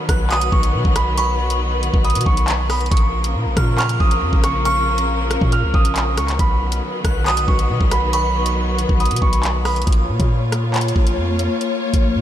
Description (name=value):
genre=hip hop, drill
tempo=138 BPM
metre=4/4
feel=half-time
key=Bb phrygian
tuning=A4 = 437 Hz
part: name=warm concert grand piano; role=melody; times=0.0-9.8 s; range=B5 to F6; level=-23 LUFS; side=right 3 dB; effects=tape echo
part: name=warm studio string section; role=sustained chords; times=0.0-12.2 s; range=Db3 to Db5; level=-24 LUFS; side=left 2 dB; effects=none
part: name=glassy synth bell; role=second line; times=0.1-9.9 s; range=B5 to F#6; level=-29 LUFS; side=left 1 dB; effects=chorus, phaser, tape echo
part: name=long sustained 808-style bass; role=bass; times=0.1-12.2 s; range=Bb1 to B2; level=-20 LUFS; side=equal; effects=none
part: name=drill drum kit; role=drums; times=0.1-12.0 s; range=handclaps, hi-hat, kick drum, rim click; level=-20 LUFS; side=equal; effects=none
room=light reverb, digital ambience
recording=none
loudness=-15 LUFS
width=side -11 dB against mid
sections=0.0-9.9 A section; 9.9-12.2 B section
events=none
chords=0.0 B; 2.9 Bbm; 6.4 B; 9.9 Bbm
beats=0.31 0.74 | 1.18 1.61 2.04 2.48 | 2.91 3.35 3.78 4.22 | 4.65 5.09 5.52 5.96 | 6.39 6.83 7.26 7.70 | 8.13 8.57 9.00 9.44 | 9.87 10.31 10.74 11.18 | 11.61 12.04